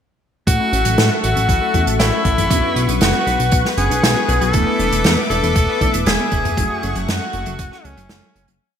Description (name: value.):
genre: synthwave.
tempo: 118 BPM.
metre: 4/4.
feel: straight.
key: A major.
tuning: A4 = 440 Hz.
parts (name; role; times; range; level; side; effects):
edgy tenor saxophone; melody; 0.5-8.5 s; C#4 to A4; -20 LUFS; left 1 dB; ping-pong delay.
brassy analog pad; sustained chords; 0.5-8.6 s; A3 to D6; -25 LUFS; left 3 dB; chorus, sidechain pumping.
warbly dusty pluck; arpeggios; 0.5-8.6 s; F#3 to D4; -28 LUFS; left 4 dB; chorus, cassette tape, digital delay.
clean electric guitar; riff; 0.5-8.5 s; E3 to B4; -30 LUFS; right 1 dB; none.
mellow FM electric piano; stabs; 0.5-7.8 s; A3 to F#4; -27 LUFS; right 2 dB; chorus, phaser, digital delay.
chorused synth bass; bass; 0.5-8.6 s; E1 to A2; -20 LUFS; equal; sidechain pumping.
electronic kick drum; drums; 0.5-7.7 s; none; -19 LUFS; equal; overdrive.
unplugged drum kit; drums; 0.5-8.6 s; hi-hat, snare drum, toms; -20 LUFS; right 1 dB; gated reverb.
room: moderate lush hall reverb, RT60 1.5 s, small room reverb.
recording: bright 1980s-style digital production.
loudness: -14 LUFS.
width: side -8 dB against mid.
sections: 0.5-8.6 verse.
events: fade-out 5.9-8.6.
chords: 0.5 A6; 2.5 Bmadd9; 4.5 E7sus4; 6.6 F#m7.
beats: | 0.47 0.98 1.49 2.00 | 2.51 3.02 3.52 4.03 | 4.54 5.05 5.56 6.07 | 6.57 7.08 7.59 8.10.